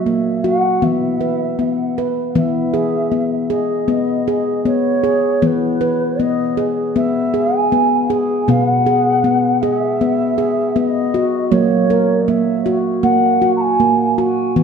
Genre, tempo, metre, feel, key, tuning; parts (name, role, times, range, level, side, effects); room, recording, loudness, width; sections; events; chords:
world meditative, meditative tuned percussion; 79 BPM; 4/4; swing 54% on 16ths; E lydian; A4 = 440 Hz
mellow bass bansuri; melody; 0.0-14.2 s; B4 to A#5; -19 LUFS; right 1 dB; tape echo
handpan; arpeggios; 0.0-14.6 s; B2 to B4; -16 LUFS; equal
wet recital hall reverb, RT60 1.4 s, studio ambience; -14 LUFS; side -6 dB against mid
0.0-2.4 A section; 2.4-14.6 B section
0.0 F#; 0.8 E5; 2.4 E; 8.5 B; 11.5 F#